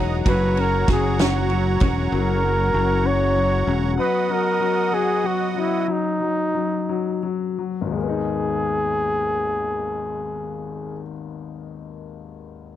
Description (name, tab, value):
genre	six-eight pop ballad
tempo	54-65 BPM (dotted quarters)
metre	6/8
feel	straight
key	G# minor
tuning	A4 = 440 Hz
part	warm baby grand piano	accompaniment	0.0-12.8 s	G#1 to A#5	-26 LUFS	left 8 dB	none
part	musette accordion	sustained chords	0.0-5.9 s	B3 to D#6	-28 LUFS	right 6 dB	none
part	clean electric guitar	arpeggios	0.0-2.1 s	F#3 to A#4	-31 LUFS	right 11 dB	none
part	modern bright fingered electric bass	bass	0.0-4.0 s	E1 to F#1	-22 LUFS	equal	none
part	breathy flugelhorn	melody	0.3-11.0 s	D#4 to C#5	-23 LUFS	right 1 dB	none
part	loose indie drum kit	drums	0.3-2.0 s	kick drum, ride cymbal, snare drum	-23 LUFS	right 1 dB	none
room	little or no reverb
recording	none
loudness	-19 LUFS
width	side -11 dB against mid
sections	0.0-8.0 A section; 8.0-12.3 B section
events	grand piano fill 0.0; slowing down 4.0-8.0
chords	0.3 F#; 4.0 B/F#; 8.0 G#madd9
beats	| 0.26 1.19 | 2.13 3.06 | 3.98 4.92 | 5.89 6.89 | 7.96 9.05 | 10.14 11.23